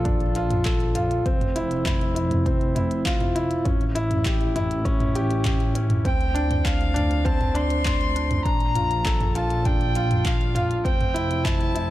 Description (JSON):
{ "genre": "piano and strings electronica", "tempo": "100 BPM", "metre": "4/4", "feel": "straight", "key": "D minor", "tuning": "A4 = 439 Hz", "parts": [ { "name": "felt-muted upright piano", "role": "riff", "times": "0.0-11.9 s", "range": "C4 to A4", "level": "-26 LUFS", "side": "equal", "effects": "digital delay" }, { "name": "dark symphonic double bass section", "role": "bass", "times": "0.0-11.9 s", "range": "F1 to D2", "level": "-26 LUFS", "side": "equal", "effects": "tube saturation, sidechain pumping" }, { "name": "electronic kick drum", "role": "drums", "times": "0.1-11.6 s", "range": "none", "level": "-25 LUFS", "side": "equal", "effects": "none" }, { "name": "minimal click drum kit", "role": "drums", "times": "0.1-11.9 s", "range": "handclaps, hi-hat, toms", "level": "-29 LUFS", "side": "right 1 dB", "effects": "none" }, { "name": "dark violin", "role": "melody", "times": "6.1-11.9 s", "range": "F5 to C6", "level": "-28 LUFS", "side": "left 1 dB", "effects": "none" } ], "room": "light reverb, small room ambience", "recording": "dark, warm production", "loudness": "-20 LUFS", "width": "side -15 dB against mid", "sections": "0.0-11.9 A section", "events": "none", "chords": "0.0 Bbmaj7; 1.3 F5; 3.7 A7; 6.1 Dm7; 8.5 Bbmaj7; 10.9 Fmaj7" }